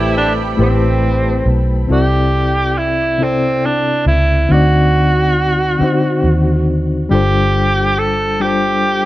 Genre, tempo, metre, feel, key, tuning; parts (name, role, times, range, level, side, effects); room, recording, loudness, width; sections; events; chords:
slow six-eight R&B; 46 BPM (dotted quarters); 6/8; straight; C major; A4 = 441 Hz
breathy tenor saxophone; melody; 0.0-9.1 s; C4 to A4; -16 LUFS; right 2 dB
reed electric piano; accompaniment; 0.0-9.1 s; C3 to D5; -17 LUFS; left 3 dB; overdrive, tremolo
lush unison pad; sustained chords; 0.0-1.9 s; A4 to B5; -27 LUFS; equal; chorus, plate reverb
warm horn section; stabs; 0.0-1.4 s; G3 to G4; -23 LUFS; right 7 dB
vintage muted fingered electric bass; bass; 0.0-9.1 s; G1 to Eb2; -16 LUFS; equal
light reverb; -12 LUFS; side -16 dB against mid
0.0-1.9 A section; 1.9-9.1 B section
0.0 Am9; 1.9 C69; 4.5 D7b9; 7.1 G7sus4